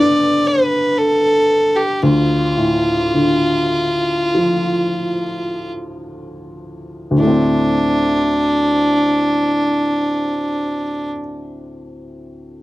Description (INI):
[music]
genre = celtic folk, Celtic slow air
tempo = 40-63 BPM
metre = 4/4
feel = rubato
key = D dorian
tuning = A4 = 440 Hz
[part]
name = clear fiddle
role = melody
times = 0.0-11.1 s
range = D4 to D5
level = -16 LUFS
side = equal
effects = none
[part]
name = clear upright piano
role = accompaniment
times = 0.0-12.6 s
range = D2 to D4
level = -19 LUFS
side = left 1 dB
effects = none
[sound]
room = small room ambience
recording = dry, close 1970s-style studio recording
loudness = -14 LUFS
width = side -17 dB against mid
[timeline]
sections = 0.0-7.2 A section; 7.2-12.6 B section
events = slowing down 0.0-7.2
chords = 0.0 G; 2.0 Dm; 7.2 D5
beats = 0.98 | 2.02 3.13 4.33 5.71 | 7.19 8.65 10.05 11.45